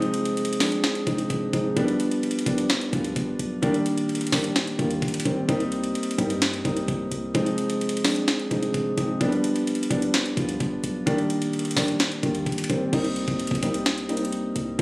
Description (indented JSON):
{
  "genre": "hip hop, trap",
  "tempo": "129 BPM",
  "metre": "4/4",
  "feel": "half-time",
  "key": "C minor",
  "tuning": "A4 = 440 Hz",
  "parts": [
    { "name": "dark concert grand piano", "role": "accompaniment", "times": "0.0-14.8 s", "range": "Eb3 to F4", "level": "-24 LUFS", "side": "equal", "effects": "none" },
    { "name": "warm 808-style bass", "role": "bass", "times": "0.0-14.8 s", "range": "Eb1 to G2", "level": "-36 LUFS", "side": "equal", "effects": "none" },
    { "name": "trap drum kit", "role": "drums", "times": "0.0-14.8 s", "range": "crash cymbal, hi-hat, kick drum, snare drum", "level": "-26 LUFS", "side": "equal", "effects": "overdrive" }
  ],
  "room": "light reverb, digital ambience",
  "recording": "recorded on a phone in the room, studio reverb",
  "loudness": "-22 LUFS",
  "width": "side -23 dB against mid",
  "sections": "0.0-12.9 A section; 12.9-14.8 B section",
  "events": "none",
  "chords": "0.0 Fm7; 1.8 G7; 3.6 Ebmaj7; 5.5 Cm7; 7.3 Fm7; 9.2 G7; 11.1 Ebmaj7; 12.9 Cm7"
}